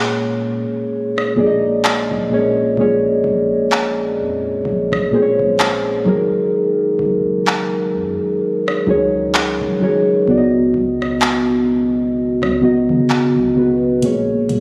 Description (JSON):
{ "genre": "contemporary R&B", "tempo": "64 BPM", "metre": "4/4", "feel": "swing 58% on 16ths", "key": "F# major", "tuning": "A4 = 440 Hz", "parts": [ { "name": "muted felt-like synth keys", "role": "accompaniment", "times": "0.0-14.6 s", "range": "A#2 to D#5", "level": "-17 LUFS", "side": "equal", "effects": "chorus" }, { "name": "soft 808-style bass", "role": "bass", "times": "0.0-14.6 s", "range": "F#1 to C#3", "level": "-32 LUFS", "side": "equal", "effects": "none" }, { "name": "booming analog drum machine", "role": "drums", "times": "1.2-14.6 s", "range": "handclaps, hi-hat, kick drum, rim click", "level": "-23 LUFS", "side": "equal", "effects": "none" } ], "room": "light reverb, digital ambience", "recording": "recorded on a phone in the room, studio reverb", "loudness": "-17 LUFS", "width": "mono", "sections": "0.0-14.6 A section", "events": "break 0.0-14.0", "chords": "0.0 A#m7; 6.1 F#69; 10.3 C#9sus4; 14.0 A#m7" }